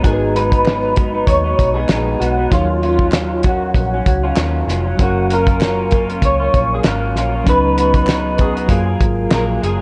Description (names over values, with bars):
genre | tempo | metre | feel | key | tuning
indie pop, bedroom pop | 97 BPM | 4/4 | swing 55% on 16ths | G# dorian | A4 = 440 Hz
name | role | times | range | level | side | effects
bell-like tine electric piano | accompaniment | 0.0-9.8 s | E#3 to E#5 | -25 LUFS | equal | cassette tape
electric guitar through a small old amp | accompaniment | 0.0-9.8 s | G#2 to G#4 | -24 LUFS | equal | analog chorus, vibrato effect
vintage muted fingered electric bass | bass | 0.0-9.8 s | E#1 to F#2 | -23 LUFS | equal | none
cloth-damped thuddy drum kit | drums | 0.0-9.8 s | hi-hat, kick drum, snare drum | -19 LUFS | equal | none
electric guitar through a small old amp | melody | 0.1-9.8 s | E#4 to C#5 | -21 LUFS | equal | ensemble chorus, analog delay
group handclap | percussion | 0.7-9.5 s | none | -36 LUFS | equal | none
room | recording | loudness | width
light reverb, small room ambience | cassette tape, nothing above 10.8 kHz | -16 LUFS | mono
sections
0.0-9.8 A section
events
none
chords
0.0 G#m7; 2.5 D#m9; 5.0 F#maj7; 7.5 C#9sus4; 8.7 F#maj9